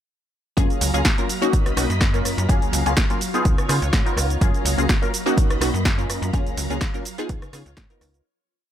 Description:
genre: filtered disco house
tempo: 125 BPM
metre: 4/4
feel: swing 54% on 16ths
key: F# major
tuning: A4 = 443 Hz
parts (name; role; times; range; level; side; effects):
- funky polysynth comp; accompaniment; 0.6-8.2 s; A#3 to A#4; -25 LUFS; left 1 dB; chorus, phaser, vintage 12-bit sampler grit, sidechain pumping
- string machine, full ensemble; sustained chords; 0.6-8.2 s; F#3 to B5; -30 LUFS; equal; ensemble chorus, sidechain pumping
- slap-like FM bass; bass; 0.6-8.2 s; B1 to C#3; -24 LUFS; equal; sidechain pumping
- electronic kick drum; drums; 0.6-7.9 s; none; -21 LUFS; equal; none
- punchy analog drum machine; drums; 0.6-8.2 s; cabasa, hi-hat, rim click, snare drum; -25 LUFS; right 1 dB; sidechain pumping on hats, sidechain pumping on perc
room: little or no reverb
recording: none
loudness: -18 LUFS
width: side -10 dB against mid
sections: 0.6-8.3 drop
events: drop 0.6-8.3; fade-out 5.7-8.3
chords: 0.6 F#maj7; 1.3 Bmaj7; 2.3 F#maj7; 3.2 C#7; 4.4 F#maj7; 5.1 Bmaj7; 6.1 F#maj7; 7.1 C#7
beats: | 0.57 1.05 1.53 2.01 | 2.49 2.97 3.45 3.93 | 4.41 4.89 5.37 5.85 | 6.33 6.81 7.29 7.77

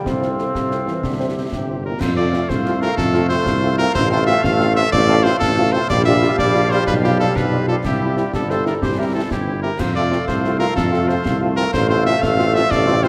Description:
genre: military-style march for wind band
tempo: 123 BPM (dotted quarters)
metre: 6/8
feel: straight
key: F major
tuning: A4 = 441 Hz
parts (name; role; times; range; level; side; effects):
- mellow euphonium; second line; 0.0-2.0 s; Bb2 to E3; -32 LUFS; equal; none
- warm woodwind section; second line; 0.0-13.1 s; E4 to F5; -28 LUFS; equal; none
- clear trombone section; sustained chords; 0.0-13.1 s; E3 to C4; -28 LUFS; equal; none
- mellow tuba; bass; 0.1-13.1 s; G1 to F2; -22 LUFS; equal; none
- concert snare drum, concert bass drum and clash cymbals; drums; 0.1-13.1 s; none; -28 LUFS; equal; none
- clear cornet; melody; 0.2-13.1 s; G4 to G5; -24 LUFS; equal; none
- mellow French horn section; accompaniment; 0.2-13.1 s; F3 to C5; -26 LUFS; equal; none
room: moderate concert hall reverb, RT60 1.9 s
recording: none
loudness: -18 LUFS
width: mono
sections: 0.0-2.0 A section; 2.0-13.1 B section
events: none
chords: 0.1 F/C; 1.0 C; 2.0 F; 4.0 F/A; 5.9 Gm7/Bb; 6.9 G7/B; 7.8 C; 9.8 F; 11.7 F/A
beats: | 0.06 0.55 | 1.03 1.52 | 2.01 2.50 | 2.98 3.47 | 3.95 4.44 | 4.93 5.41 | 5.90 6.39 | 6.87 7.36 | 7.84 8.33 | 8.82 9.30 | 9.79 10.28 | 10.76 11.25 | 11.74 12.22 | 12.71

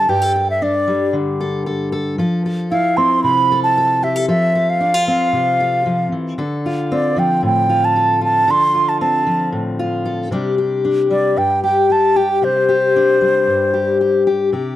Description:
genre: folk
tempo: 114 BPM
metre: 4/4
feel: straight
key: C major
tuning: A4 = 440 Hz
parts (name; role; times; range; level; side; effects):
- reedy baroque flute; melody; 0.0-14.3 s; C5 to C6; -15 LUFS; right 1 dB; slapback echo
- fingerpicked steel-string acoustic guitar; accompaniment; 0.0-14.8 s; G2 to A4; -18 LUFS; left 2 dB; none
room: little or no reverb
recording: dry, close 1970s-style studio recording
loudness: -14 LUFS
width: side -13 dB against mid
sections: 0.0-14.8 A section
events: none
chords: 0.0 Gsus2; 2.2 Fmaj7; 6.4 Dm7; 10.3 Csus2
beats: | 0.09 0.61 1.14 1.66 | 2.19 2.71 3.23 3.76 | 4.28 4.81 5.33 5.86 | 6.38 6.91 7.43 7.96 | 8.48 9.01 9.53 10.06 | 10.58 11.11 11.63 12.16 | 12.69 13.21 13.73 14.26

